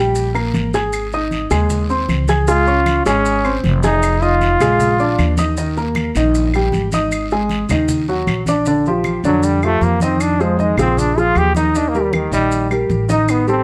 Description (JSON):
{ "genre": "Afro-Cuban jazz", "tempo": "155 BPM", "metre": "4/4", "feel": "straight", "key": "unclear", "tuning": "A4 = 440 Hz", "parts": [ { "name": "warm concert grand piano", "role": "accompaniment", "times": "0.0-13.6 s", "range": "D3 to Ab6", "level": "-20 LUFS", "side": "equal", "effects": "none" }, { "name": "upright bass", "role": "bass", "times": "0.0-13.6 s", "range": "F1 to F2", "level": "-22 LUFS", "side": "equal", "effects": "none" }, { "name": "congas", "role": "percussion", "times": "0.1-13.6 s", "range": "none", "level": "-26 LUFS", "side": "equal", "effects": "none" }, { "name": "guiro", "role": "percussion", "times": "0.2-8.7 s", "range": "none", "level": "-35 LUFS", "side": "equal", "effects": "none" }, { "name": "maracas", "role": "percussion", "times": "0.2-13.6 s", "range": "none", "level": "-36 LUFS", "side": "equal", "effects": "none" }, { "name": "claves", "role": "percussion", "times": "0.4-13.5 s", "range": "none", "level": "-31 LUFS", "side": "equal", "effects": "none" }, { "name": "brilliant trombone", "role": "melody", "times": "2.5-5.4, 9.3-13.6 s", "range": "Eb3 to G4", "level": "-19 LUFS", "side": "equal", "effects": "none" } ], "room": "light reverb", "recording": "none", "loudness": "-16 LUFS", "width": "mono", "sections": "0.0-8.7 A section; 8.7-13.6 B section", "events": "trombone solo 8.7-13.6", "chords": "0.0 Gm; 0.9 Ab; 2.5 Dbmaj7; 4.0 Fm7; 4.8 Bb7; 5.6 Eb; 7.1 Absus2; 8.7 Bb6; 10.2 Fm7; 11.0 Bb5; 11.7 Eb" }